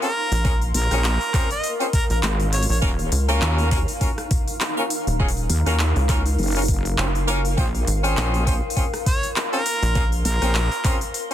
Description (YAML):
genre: glitch hop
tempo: 101 BPM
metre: 4/4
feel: swing 56% on 16ths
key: Bb minor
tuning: A4 = 440 Hz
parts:
  - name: clear harmonica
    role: melody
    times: 0.0-2.8, 9.1-11.0 s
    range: Bb4 to Eb5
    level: -26 LUFS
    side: right 1 dB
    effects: dub echo
  - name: mellow horn section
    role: stabs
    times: 0.0-11.3 s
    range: Ab3 to C5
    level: -27 LUFS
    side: equal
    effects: sidechain pumping, dub echo
  - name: glitchy drum kit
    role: drums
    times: 0.0-11.3 s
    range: handclaps, hi-hat, rim click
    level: -27 LUFS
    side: left 1 dB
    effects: overdrive
  - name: granular cloud pad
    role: texture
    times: 0.0-11.3 s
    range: Eb4 to C6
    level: -30 LUFS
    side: left 1 dB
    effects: built-in reverb, sidechain pumping
  - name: rubbery square bass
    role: bass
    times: 0.3-10.2 s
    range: Eb1 to Db2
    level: -21 LUFS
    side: equal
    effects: none
  - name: electronic kick drum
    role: drums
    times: 0.4-11.0 s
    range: none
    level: -22 LUFS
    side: equal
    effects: none
  - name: wobble bass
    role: bass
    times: 0.7-10.7 s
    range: Eb1 to Eb2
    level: -21 LUFS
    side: equal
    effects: chorus
room: little or no reverb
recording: dense, heavily limited modern master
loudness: -19 LUFS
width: side -11 dB against mid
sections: 0.0-11.3 A section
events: none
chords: 0.0 Bbm9; 2.8 Ebm7; 7.6 Bbm9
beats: | 0.45 1.04 1.64 2.23 | 2.83 3.42 4.01 4.61 | 5.20 5.80 6.39 6.98 | 7.58 8.17 8.77 9.36 | 9.95 10.55 11.14